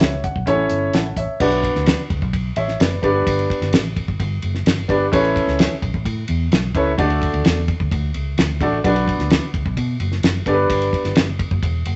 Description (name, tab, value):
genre	uptempo 1960s-style soul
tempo	129 BPM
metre	4/4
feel	straight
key	unclear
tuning	A4 = 440 Hz
part	warm upright piano	accompaniment	0.0-11.2 s	A3 to A5	-21 LUFS	equal	none
part	vintage muted fingered electric bass	bass	0.0-12.0 s	E1 to B2	-25 LUFS	equal	none
part	cloth-damped thuddy drum kit	drums	0.0-12.0 s	crash cymbal, hi-hat, kick drum, ride cymbal, snare drum	-23 LUFS	equal	none
room	wet studio reverb, RT60 0.6 s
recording	nothing above 8.0 kHz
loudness	-19 LUFS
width	mono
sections	0.0-1.4 A section; 1.4-12.0 B section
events	none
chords	0.5 A; 1.4 Bm; 3.0 G; 5.1 Aadd9; 7.0 D; 8.8 Bm; 10.5 G